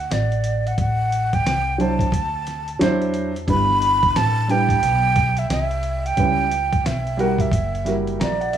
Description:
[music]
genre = hip hop, jazz-hop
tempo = 89 BPM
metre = 4/4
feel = swing 62% on 16ths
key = unclear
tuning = A4 = 443 Hz
[part]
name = breathy mellow silver concert flute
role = melody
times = 0.0-8.6 s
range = D5 to B5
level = -21 LUFS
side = right 2 dB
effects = plate reverb, analog delay
[part]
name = upright bass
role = bass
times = 0.0-8.6 s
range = F#1 to E2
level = -24 LUFS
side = equal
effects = none
[part]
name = dusty soul sampler-style drum kit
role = drums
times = 0.1-8.6 s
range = hi-hat, kick drum, snare drum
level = -24 LUFS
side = equal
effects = none
[part]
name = dark concert grand piano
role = accompaniment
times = 1.8-8.6 s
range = F#3 to A#5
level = -22 LUFS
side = right 2 dB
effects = plate reverb
[sound]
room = moderate studio reverb, RT60 0.6 s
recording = rough home demo mix, studio ambience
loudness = -18 LUFS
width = side -9 dB against mid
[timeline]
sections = 0.0-8.6 A section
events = grand piano fill 7.9-8.6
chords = 0.0 D; 0.8 Am; 2.1 D9; 3.5 G6; 6.2 C#m7b5; 7.5 F#7b9

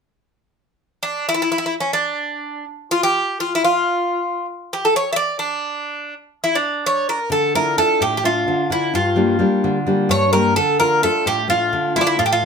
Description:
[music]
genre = greek folk, Greek bouzouki band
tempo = free time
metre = none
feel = none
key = D harmonic minor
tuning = A4 = 440 Hz
[part]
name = Greek bouzouki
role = melody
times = 1.0-12.4 s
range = C#4 to E5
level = -18 LUFS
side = equal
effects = none
[part]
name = nylon-string guitar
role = accompaniment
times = 7.3-12.4 s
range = G2 to E5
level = -20 LUFS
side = left 2 dB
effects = none
[sound]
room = moderate studio reverb, RT60 0.6 s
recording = none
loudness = -16 LUFS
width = side -6 dB against mid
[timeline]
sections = 0.8-7.3 A section; 7.3-12.4 B section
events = none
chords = 0.8 N.C.; 7.3 Dmadd9; 8.9 Gm; 10.6 Dm

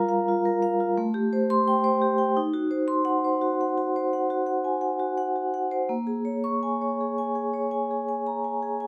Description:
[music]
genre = classical, contemporary piece for solo vibraphone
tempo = 82-87 BPM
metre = 5/4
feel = rubato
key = unclear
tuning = A4 = 441 Hz
[part]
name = vibraphone with medium hard mallets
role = solo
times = 0.0-8.9 s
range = G3 to Db6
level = -26 LUFS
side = equal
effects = none
[sound]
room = light reverb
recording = close, detailed microphones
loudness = -26 LUFS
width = mono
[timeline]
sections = 0.0-8.9 A section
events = none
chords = 0.0 Gm7; 1.0 Am7; 2.4 Ebm6; 5.9 Bbm7

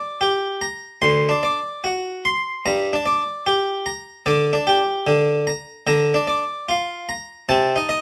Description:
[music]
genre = classical, baroque-style suite movement for harpsichord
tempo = 74 BPM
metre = 4/4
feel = rubato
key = G minor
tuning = A4 = 440 Hz
[part]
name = harpsichord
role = solo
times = 0.0-8.0 s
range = D2 to C6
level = -21 LUFS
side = equal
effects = none
[sound]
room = light reverb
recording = close, detailed microphones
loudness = -21 LUFS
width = mono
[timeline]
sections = 0.0-8.0 A section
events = none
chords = 0.0 Gm; 1.0 D7; 2.7 Gm; 5.9 Bb/D; 7.5 F7/C (rootless)

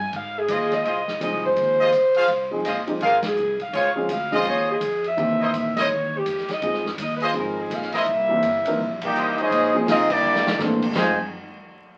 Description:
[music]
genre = jazz, big band swing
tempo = 166 BPM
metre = 4/4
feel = swing 63% on 8ths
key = F minor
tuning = A4 = 440 Hz
[part]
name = mellow saxophone section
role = melody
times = 0.0-9.1 s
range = G4 to Ab5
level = -25 LUFS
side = equal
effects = none
[part]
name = upright bass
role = bass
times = 0.0-11.2 s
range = F1 to Db3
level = -37 LUFS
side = equal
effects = none
[part]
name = swinging big-band drum kit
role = drums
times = 0.1-11.1 s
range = crash cymbal, hi-hat, kick drum, ride cymbal, snare drum, toms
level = -35 LUFS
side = equal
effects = none
[part]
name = clear trumpet section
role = stabs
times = 0.5-9.5 s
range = E4 to F5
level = -26 LUFS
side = equal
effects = none
[part]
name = warm upright piano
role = accompaniment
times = 1.2-11.2 s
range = D#3 to Bb4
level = -28 LUFS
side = equal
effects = none
[part]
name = clear trombone section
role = second line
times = 8.0-11.2 s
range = F2 to E4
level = -33 LUFS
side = equal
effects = none
[part]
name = clear trumpet section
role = melody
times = 9.0-11.2 s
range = Bb3 to Ab5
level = -22 LUFS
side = equal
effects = none
[sound]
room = wet studio ambience, RT60 0.5 s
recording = very old 78 rpm record, vinyl crackle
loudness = -22 LUFS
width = mono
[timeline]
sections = 0.0-9.5 A section; 9.5-11.0 B section; 11.0-12.0 C section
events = band accent 3.2, 9.0, 10.1; drum fill 10.2-10.6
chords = 0.0 Fm7; 3.7 Dbmaj7; 5.2 C7#9; 6.6 Fm7; 8.1 C7#9; 9.5 Bbm9; 10.2 C13; 11.0 Fm7

